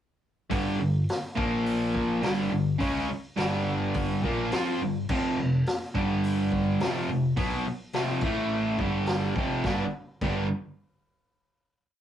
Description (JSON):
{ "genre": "garage rock duo or trio", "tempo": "105 BPM", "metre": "4/4", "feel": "straight", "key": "unclear", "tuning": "A4 = 440 Hz", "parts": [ { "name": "cranked stack guitar", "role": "riff", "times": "0.5-10.5 s", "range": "F2 to F4", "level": "-26 LUFS", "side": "equal", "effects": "overdrive" }, { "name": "overdriven fingered electric bass", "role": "bass", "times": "0.5-10.5 s", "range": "F1 to F2", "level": "-37 LUFS", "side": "equal", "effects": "tube saturation" }, { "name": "vintage drum kit", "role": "drums", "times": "0.5-10.3 s", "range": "crash cymbal, hi-hat, kick drum, snare drum", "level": "-33 LUFS", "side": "equal", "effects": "none" } ], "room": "moderate small room reverb, RT60 0.5 s", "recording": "rough rehearsal-room recording", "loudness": "-25 LUFS", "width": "side -10 dB against mid", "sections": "0.5-9.6 riff; 9.6-11.9 final chord", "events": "none", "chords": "0.5 G5; 1.4 Bb5; 2.2 G5; 5.1 F5; 5.9 G5; 6.8 F5; 8.2 A5; 8.8 G5; 9.4 F5; 9.6 G" }